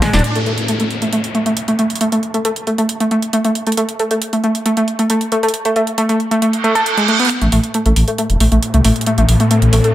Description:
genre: driving peak-time techno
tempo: 136 BPM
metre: 4/4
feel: straight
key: unclear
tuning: A4 = 445 Hz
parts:
  - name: overdriven synth lead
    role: riff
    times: 0.0-9.9 s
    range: Ab3 to A4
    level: -15 LUFS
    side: equal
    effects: distortion, chorus, tube saturation, vintage 12-bit sampler grit, digital delay
  - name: analog drone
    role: drone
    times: 0.0-0.3, 8.1-9.9 s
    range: A2 to A3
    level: -20 LUFS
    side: left 1 dB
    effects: chorus
  - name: techno drum kit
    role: drums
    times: 0.0-9.9 s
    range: hi-hat, snare drum, tambourine, toms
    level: -22 LUFS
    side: right 2 dB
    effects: none
  - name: detuned saw bass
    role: bass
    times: 0.1-0.2, 7.4-9.8 s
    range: D#1 to C2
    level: -13 LUFS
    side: equal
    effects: none
  - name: downlifter, reverse cymbal and riser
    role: sound effects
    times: 0.2-3.8, 6.5-9.9 s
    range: none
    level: -22 LUFS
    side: right 2 dB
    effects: none
room: moderate stone room reverb, RT60 1.2 s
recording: none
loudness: -13 LUFS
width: side -13 dB against mid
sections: 0.2-7.3 A section; 7.3-9.9 B section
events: drum fill 0.0; filter sweep on analog synth lead 0.2-7.3; reverse cymbal 6.5-7.3; build-up 7.3-9.9; riser 7.3-9.9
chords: none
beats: | 0.24 0.68 1.12 1.57 | 2.01 2.45 2.89 3.33 | 3.77 4.21 4.66 5.10 | 5.54 5.98 6.42 6.86 | 7.30 7.74 8.18 8.62 | 9.07 9.51

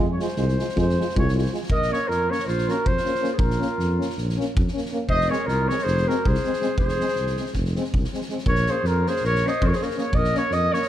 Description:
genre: balkan folk, Balkan brass band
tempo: 320 BPM (eighths)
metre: 9/8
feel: straight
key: Bb minor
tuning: A4 = 440 Hz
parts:
  - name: clear euphonium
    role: accompaniment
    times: 0.0-10.8 s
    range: Ab3 to Bb3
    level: -33 LUFS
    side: right 5 dB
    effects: none
  - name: warm French horn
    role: accompaniment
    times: 0.0-10.8 s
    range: C4 to F4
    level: -31 LUFS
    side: left 5 dB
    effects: none
  - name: dark tuba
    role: bass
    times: 0.0-10.7 s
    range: F1 to F2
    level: -25 LUFS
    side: equal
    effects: none
  - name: mellow flugelhorn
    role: melody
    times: 0.1-10.9 s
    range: Bb4 to Eb5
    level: -25 LUFS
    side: equal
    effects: none
  - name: loose indie drum kit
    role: percussion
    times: 0.2-10.9 s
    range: kick drum, snare drum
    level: -27 LUFS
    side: equal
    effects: none
  - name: warm clarinet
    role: second line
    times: 1.7-10.9 s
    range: F4 to C5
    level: -30 LUFS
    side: equal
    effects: none
room: light reverb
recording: none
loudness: -20 LUFS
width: side -12 dB against mid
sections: 0.0-1.7 A section; 1.7-10.9 B section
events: speeding up 0.0-10.9; flugelhorn solo 0.0-1.7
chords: 0.0 Fm; 1.7 Bbm; 5.1 Fm; 8.5 Bbm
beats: 0.16 0.35 0.54 0.73 0.92 1.11 1.30 1.50 | 1.69 1.88 2.07 2.25 2.44 2.63 2.82 3.01 3.20 | 3.39 3.58 3.77 3.96 4.15 4.34 4.53 4.71 4.90 | 5.09 5.28 5.46 5.65 5.84 6.03 6.21 6.40 6.59 | 6.78 6.96 7.15 7.34 7.52 7.71 7.90 8.08 8.27 | 8.45 8.64 8.83 9.01 9.20 9.38 9.57 9.75 9.94 | 10.12 10.31 10.49 10.68 10.86

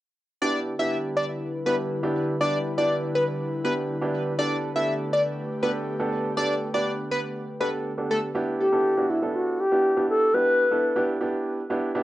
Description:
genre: pop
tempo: 121 BPM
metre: 4/4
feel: straight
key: E minor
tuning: A4 = 438 Hz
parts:
  - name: plucky unison lead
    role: melody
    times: 0.4-8.2 s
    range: A4 to E5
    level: -26 LUFS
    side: left 1 dB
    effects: cassette tape, analog delay
  - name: warm baby grand piano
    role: accompaniment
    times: 0.4-12.0 s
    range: B3 to B4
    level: -28 LUFS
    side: right 2 dB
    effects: cassette tape
  - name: airy breathy pad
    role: sustained chords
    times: 0.4-8.3 s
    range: D3 to B4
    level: -32 LUFS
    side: left 1 dB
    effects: chorus, cassette tape
  - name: wooden-headed alto flute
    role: melody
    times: 8.6-11.1 s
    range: E4 to B4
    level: -22 LUFS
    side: left 1 dB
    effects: cassette tape, analog delay
room: moderate small room reverb, RT60 0.6 s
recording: home recording on cassette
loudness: -22 LUFS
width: side -15 dB against mid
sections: 0.4-8.4 A section; 8.4-12.0 B section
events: none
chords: 0.4 Em7; 4.4 Gadd9; 8.4 Em7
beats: | 0.42 0.92 1.41 1.91 | 2.40 2.90 3.40 3.89 | 4.39 4.88 5.38 5.88 | 6.37 6.87 7.36 7.86 | 8.36 8.85 9.35 9.84 | 10.34 10.83 11.33 11.83

